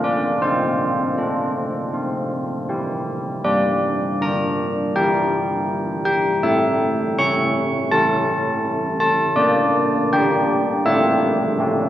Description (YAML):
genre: classical, tune for church bells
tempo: 80 BPM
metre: 4/4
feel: straight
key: unclear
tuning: A4 = 440 Hz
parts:
  - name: old church bells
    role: solo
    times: 0.0-11.9 s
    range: G3 to C#6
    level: -17 LUFS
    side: equal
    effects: none
room: moderate concert hall reverb, RT60 2.1 s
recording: none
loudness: -17 LUFS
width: side -12 dB against mid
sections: 0.0-11.9 A section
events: none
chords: 0.4 F/C; 1.9 C; 3.4 Em7b5/G; 6.4 A; 9.4 Gm/Bb; 10.9 Dm/A